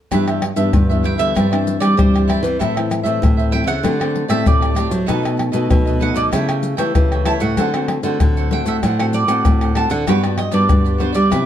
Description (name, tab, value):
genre	samba and choro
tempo	96 BPM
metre	4/4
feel	straight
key	G major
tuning	A4 = 440 Hz
part	cavaquinho	accompaniment	0.1-11.5 s	D4 to G5	-25 LUFS	right 4 dB	none
part	nylon-string guitar	accompaniment	0.1-11.5 s	G2 to G4	-23 LUFS	left 6 dB	none
part	nylon-string guitar	bass	0.1-11.5 s	G2 to G3	-19 LUFS	right 1 dB	none
part	maracas, surdo, pandeiro and tamborim	percussion	0.1-11.5 s	none	-19 LUFS	left 1 dB	none
part	mandolin	melody	1.1-11.5 s	C5 to A5	-22 LUFS	right 3 dB	none
room	light reverb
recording	dark, warm production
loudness	-14 LUFS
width	side -10 dB against mid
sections	0.1-11.5 A section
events	none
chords	0.1 G6; 1.4 Cadd9/G; 2.6 Am; 3.8 D7sus4; 5.1 B7; 6.3 A7/C#; 7.6 D7; 10.1 Gmaj7